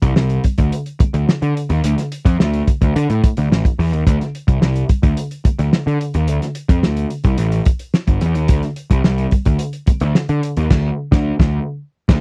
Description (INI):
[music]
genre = funk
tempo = 108 BPM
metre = 4/4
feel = straight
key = unclear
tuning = A4 = 440 Hz
[part]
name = fuzz picked electric bass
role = bass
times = 0.0-12.2 s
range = G1 to D3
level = -20 LUFS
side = equal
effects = overdrive
[part]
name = warm soul drum kit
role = drums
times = 0.0-12.2 s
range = crash cymbal, hi-hat, kick drum, snare drum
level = -17 LUFS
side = equal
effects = none
[sound]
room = little or no reverb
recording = dry, close 1970s-style studio recording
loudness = -17 LUFS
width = mono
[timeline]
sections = 0.0-12.2 A section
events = band accent 10.7-12.2; drum fill 11.8-12.2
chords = none